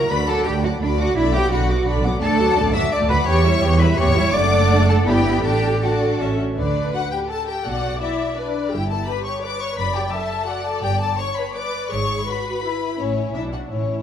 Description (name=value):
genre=quick classical-period movement for string orchestra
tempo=168 BPM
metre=3/4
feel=rubato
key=D major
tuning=A4 = 440 Hz
part: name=rich studio violin section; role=melody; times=0.0-14.0 s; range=C#5 to E6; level=-26 LUFS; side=left 5 dB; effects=none
part: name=rich studio violin section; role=second line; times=0.0-14.0 s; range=C#4 to D6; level=-28 LUFS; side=left 4 dB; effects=none
part: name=rich studio viola section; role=accompaniment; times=0.0-14.0 s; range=D3 to E5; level=-24 LUFS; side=right 1 dB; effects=none
part: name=rich studio cello section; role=bass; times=0.0-14.0 s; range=F#2 to E5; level=-24 LUFS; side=equal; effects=none
part: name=warm studio double bass section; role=bass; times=0.0-14.0 s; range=F#1 to E2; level=-22 LUFS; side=right 2 dB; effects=none
room=moderate scoring stage reverb, RT60 1.7 s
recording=dark, warm production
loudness=-18 LUFS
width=side -9 dB against mid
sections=0.0-6.6 A section; 6.6-14.0 B section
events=none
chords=0.1 Bm/D; 1.2 Bm; 2.2 D; 3.3 C#dim/E; 4.3 D/F#; 5.1 Em7/G; 5.4 D/A; 6.2 A; 6.6 D5; 7.7 Bm; 8.7 Em/G; 9.8 D/F#; 10.8 G; 11.9 E/G#; 13.0 A; 13.3 Bm